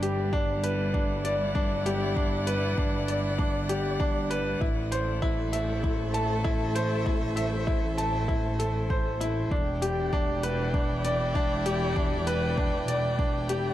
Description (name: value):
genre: piano and strings electronica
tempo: 98 BPM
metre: 4/4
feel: straight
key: E minor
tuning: A4 = 439 Hz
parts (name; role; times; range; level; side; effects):
- warm string quartet; sustained chords; 0.0-13.7 s; E3 to G5; -34 LUFS; left 1 dB; none
- clear upright piano; riff; 0.0-13.7 s; D4 to A5; -29 LUFS; equal; digital delay
- warm studio double bass section; bass; 0.0-13.7 s; E1 to A1; -31 LUFS; equal; sidechain pumping
- electronic hi-hat; drums; 0.0-13.6 s; none; -38 LUFS; left 4 dB; overdrive
- electronic kick drum; drums; 0.3-13.3 s; none; -29 LUFS; equal; overdrive
room: light reverb, small room ambience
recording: dark, warm production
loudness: -25 LUFS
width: side -13 dB against mid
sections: 0.0-13.7 A section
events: none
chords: 0.0 Em7/G; 4.6 Am; 9.5 Em7